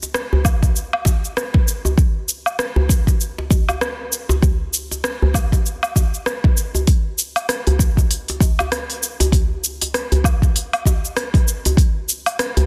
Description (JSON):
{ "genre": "downtempo", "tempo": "98 BPM", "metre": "4/4", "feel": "swing 58% on 16ths", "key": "none", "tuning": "none", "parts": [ { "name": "deep house drum kit", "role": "drums", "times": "0.0-12.7 s", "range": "hi-hat, rim click, shaker, woodblock", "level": "-24 LUFS", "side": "equal", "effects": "none" }, { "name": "djembe", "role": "percussion", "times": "0.0-12.7 s", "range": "none", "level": "-23 LUFS", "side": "equal", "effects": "none" }, { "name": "electronic kick drum", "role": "drums", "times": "0.4-11.9 s", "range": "none", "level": "-18 LUFS", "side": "equal", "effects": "none" } ], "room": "light reverb", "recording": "dense, heavily limited modern master", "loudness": "-19 LUFS", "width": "mono", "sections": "0.0-12.7 A section", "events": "none", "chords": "none", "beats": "0.14 0.76 1.37 | 1.98 2.59 3.21 3.82 | 4.43 5.04 5.66 6.27 | 6.88 7.49 8.10 8.72 | 9.33 9.94 10.55 11.16 | 11.78 12.39" }